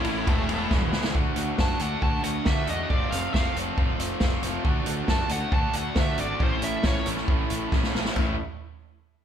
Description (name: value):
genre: indie rock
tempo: 137 BPM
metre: 4/4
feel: straight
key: unclear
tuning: A4 = 441 Hz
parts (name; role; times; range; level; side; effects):
- dark smooth lead guitar; melody; 0.0-7.1 s; A3 to A5; -31 LUFS; right 1 dB; overdrive, digital delay
- combo organ; sustained chords; 0.0-1.1, 4.6-8.4 s; A3 to A5; -40 LUFS; right 2 dB; none
- overdriven electric guitar; riff; 0.0-8.3 s; A2 to F#4; -32 LUFS; right 5 dB; none
- raw garage guitar; riff; 0.0-8.3 s; E2 to F#4; -31 LUFS; left 5 dB; overdrive
- fuzz fingered electric bass; bass; 0.0-8.4 s; E1 to D3; -33 LUFS; equal; overdrive
- vintage drum kit; drums; 0.0-8.3 s; crash cymbal, hi-hat, kick drum, ride cymbal, snare drum, toms; -26 LUFS; equal; none
room: light reverb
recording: band playing live in one room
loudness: -23 LUFS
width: side -9 dB against mid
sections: 0.0-1.2 A section; 1.2-8.2 B section; 8.2-9.2 C section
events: drum fill 0.7-1.2, 7.7-8.2; lead electric guitar solo 1.2-8.2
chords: 0.3 E; 1.2 D; 2.9 F; 4.7 D; 6.4 A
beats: 0.28 0.71 | 1.15 1.59 2.03 2.46 | 2.90 3.34 3.78 4.22 | 4.66 5.09 5.53 5.97 | 6.41 6.84 7.28 7.72 | 8.16